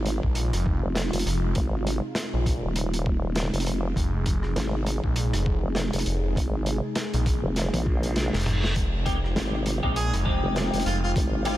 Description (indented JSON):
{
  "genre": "glitch hop",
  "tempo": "100 BPM",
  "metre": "4/4",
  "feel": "swing 58% on 16ths",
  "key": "F minor",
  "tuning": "A4 = 443 Hz",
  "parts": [
    { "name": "warm analog pad", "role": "sustained chords", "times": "0.0-11.6 s", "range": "C3 to Ab4", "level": "-32 LUFS", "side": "right 1 dB", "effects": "chorus, sidechain pumping" },
    { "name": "vowel-sweep wobble bass", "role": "bass", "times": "0.0-11.6 s", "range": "Eb1 to Bb1", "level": "-26 LUFS", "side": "equal", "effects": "chorus" },
    { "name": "crunchy breakbeat drum kit", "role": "drums", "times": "0.1-11.6 s", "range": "hi-hat, rim click, snare drum, toms", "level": "-32 LUFS", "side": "equal", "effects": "none" },
    { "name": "phased detuned saw bass", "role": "bass", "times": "0.2-11.1 s", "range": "F1 to Bb1", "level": "-26 LUFS", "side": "equal", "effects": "phaser" },
    { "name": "electronic kick drum", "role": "drums", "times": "0.2-11.3 s", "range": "none", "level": "-27 LUFS", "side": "equal", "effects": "overdrive" },
    { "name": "reverse cymbal", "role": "sound effects", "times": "7.9-8.8 s", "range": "none", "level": "-37 LUFS", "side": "right 1 dB", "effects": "none" },
    { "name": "semi-hollow electric guitar", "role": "stabs", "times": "9.1-11.6 s", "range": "Ab3 to G4", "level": "-30 LUFS", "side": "left 1 dB", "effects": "analog chorus, sidechain pumping, low-pass filter, tape echo" },
    { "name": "warm harmonica", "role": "melody", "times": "10.0-11.6 s", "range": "F4 to Ab4", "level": "-32 LUFS", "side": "right 1 dB", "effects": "tape echo" }
  ],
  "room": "light reverb, studio reverb",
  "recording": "none",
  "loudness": "-23 LUFS",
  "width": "side -14 dB against mid",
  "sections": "0.0-11.6 A section",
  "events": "drum fill 7.6-8.8; reverse cymbal 7.9-8.8",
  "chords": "0.0 Fm7"
}